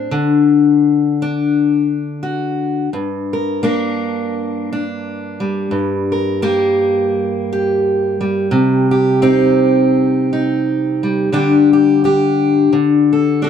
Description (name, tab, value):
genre	folk, solo fingerstyle acoustic guitar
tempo	86 BPM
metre	4/4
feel	swing 56% on 8ths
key	G minor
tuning	A4 = 440 Hz
part	fingerpicked steel-string acoustic guitar	solo	0.0-13.5 s	G2 to Bb4	-13 LUFS	left 1 dB	none
room	light reverb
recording	dark, warm production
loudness	-13 LUFS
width	side -8 dB against mid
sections	0.0-2.9 A section; 2.9-13.5 B section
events	none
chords	0.1 D; 2.9 Gm; 8.5 Cm; 11.3 Dsus4; 12.7 D5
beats	| 0.12 0.82 1.52 2.22 | 2.92 3.62 4.32 5.02 | 5.72 6.42 7.12 7.82 | 8.52 9.22 9.91 10.62 | 11.31 12.01 12.71 13.41